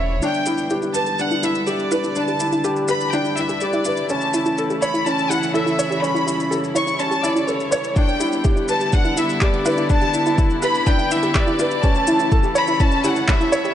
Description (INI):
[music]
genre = piano and strings electronica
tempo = 124 BPM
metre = 4/4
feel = straight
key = E dorian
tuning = A4 = 440 Hz
[part]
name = clear chamber violin section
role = melody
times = 0.0-13.7 s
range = C#5 to C#6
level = -22 LUFS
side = left 1 dB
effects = none
[part]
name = rich chamber string section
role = sustained chords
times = 0.0-13.7 s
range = C#3 to D5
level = -28 LUFS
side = left 1 dB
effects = sidechain pumping, low-pass filter
[part]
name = felt-muted upright piano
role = riff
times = 0.0-13.7 s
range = C#4 to E5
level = -22 LUFS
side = equal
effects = none
[part]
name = warm sub bass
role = bass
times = 0.0-13.7 s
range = E1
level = -35 LUFS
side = equal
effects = none
[part]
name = soft round pluck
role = arpeggios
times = 0.2-13.7 s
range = E4 to E5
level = -26 LUFS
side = right 1 dB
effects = chorus, sidechain pumping, tape echo
[part]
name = electronic shaker and handclaps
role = drums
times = 0.2-13.7 s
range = none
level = -28 LUFS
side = left 1 dB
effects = studio reverb
[part]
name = electronic kick drum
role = drums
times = 8.0-13.4 s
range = none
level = -18 LUFS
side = equal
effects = studio reverb
[sound]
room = moderate huge ambient reverb, RT60 4.2 s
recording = nothing above 10.5 kHz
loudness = -17 LUFS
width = side -10 dB against mid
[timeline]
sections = 0.2-13.7 A section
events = build-up 0.2-13.7; filter sweep on string section 0.2-13.7; filter sweep on synth arpeggio sound 0.2-13.7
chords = 0.2 Em7; 4.1 A/E; 8.0 Em7; 11.8 A/E